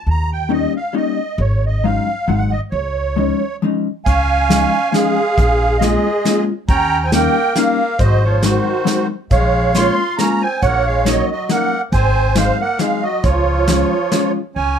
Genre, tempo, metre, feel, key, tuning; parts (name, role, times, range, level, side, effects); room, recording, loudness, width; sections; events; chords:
musette waltz; 137 BPM; 3/4; swing 55% on 8ths; Db major; A4 = 440 Hz
musette accordion; melody; 0.0-14.8 s; F4 to C6; -18 LUFS; right 4 dB
upright bass; bass; 0.1-14.8 s; Ab1 to Eb2; -18 LUFS; equal
vintage hollow-body jazz guitar; accompaniment; 0.5-14.4 s; F3 to F4; -18 LUFS; left 5 dB
accordion; second line; 4.1-14.8 s; Eb3 to F4; -23 LUFS; equal
soft brush drum kit; drums; 4.1-14.2 s; hi-hat, kick drum, snare drum; -20 LUFS; equal
moderate studio reverb, RT60 0.5 s; lossy compression artefacts; -14 LUFS; side -8 dB against mid
0.0-4.1 A section; 4.1-14.6 B section
0.1 Eb7; 1.4 Ab7sus4; 2.3 Ab7; 2.7 Dbadd9; 5.4 Bbm7; 6.7 Eb7; 8.0 Ab7; 9.3 Bbm7; 10.6 Ebm7/Bb; 11.9 Ab7; 13.2 Db